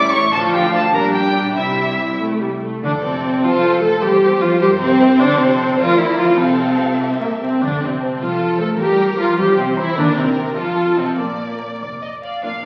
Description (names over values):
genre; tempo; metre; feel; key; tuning
quick classical-period movement for string orchestra; 100 BPM (dotted quarters); 6/8; rubato; F major; A4 = 439 Hz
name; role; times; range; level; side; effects
rich chamber violin section; melody; 0.0-12.7 s; A4 to D6; -24 LUFS; equal; none
rich chamber violin section; second line; 0.0-12.5 s; E4 to Bb5; -26 LUFS; equal; none
warm studio viola section; accompaniment; 0.0-12.7 s; F3 to A4; -19 LUFS; equal; none
rich chamber cello section; bass; 0.0-12.7 s; Bb2 to F4; -26 LUFS; equal; none
rich chamber double bass section; bass; 0.0-12.7 s; F1 to G2; -32 LUFS; equal; none
room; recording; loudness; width
wet scoring stage reverb, RT60 1.7 s; very old 78 rpm record, vinyl crackle; -17 LUFS; mono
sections
0.0-2.8 A section; 2.8-12.4 B section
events
none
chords
0.3 Dm; 0.9 Gm/Bb; 1.6 C; 2.8 F; 4.0 C7/E; 5.2 F; 5.8 Bb/D; 6.4 F/C; 7.0 C; 7.6 F; 8.8 C7/E; 10.0 Cm/Eb; 10.6 F7; 11.2 Bb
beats
| 0.33 0.94 | 1.57 2.21 | 2.83 3.44 | 4.03 4.62 | 5.21 5.80 | 6.40 7.01 | 7.62 8.22 | 8.81 9.40 | 9.99 10.59 | 11.19 11.81 | 12.44